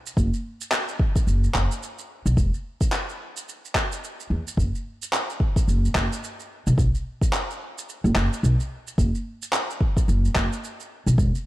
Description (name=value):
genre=organic downtempo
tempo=109 BPM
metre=4/4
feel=swing 59% on 16ths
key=unclear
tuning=A4 = 440 Hz
part: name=electronic shaker and handclaps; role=drums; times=0.1-11.4 s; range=none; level=-28 LUFS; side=equal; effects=none
part: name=upright bass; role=bass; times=0.2-11.3 s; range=E1 to E2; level=-21 LUFS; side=equal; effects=sidechain pumping
part: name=electronic kick drum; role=drums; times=0.2-11.3 s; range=none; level=-23 LUFS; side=equal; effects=none
room=little or no reverb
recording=dark, warm production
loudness=-22 LUFS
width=side -16 dB against mid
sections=0.0-11.5 A section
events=none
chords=none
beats=| 0.17 0.73 1.28 1.83 | 2.38 2.93 3.48 4.03 | 4.58 5.13 5.68 6.23 | 6.78 7.33 7.88 8.43 | 8.98 9.53 10.08 10.63 | 11.19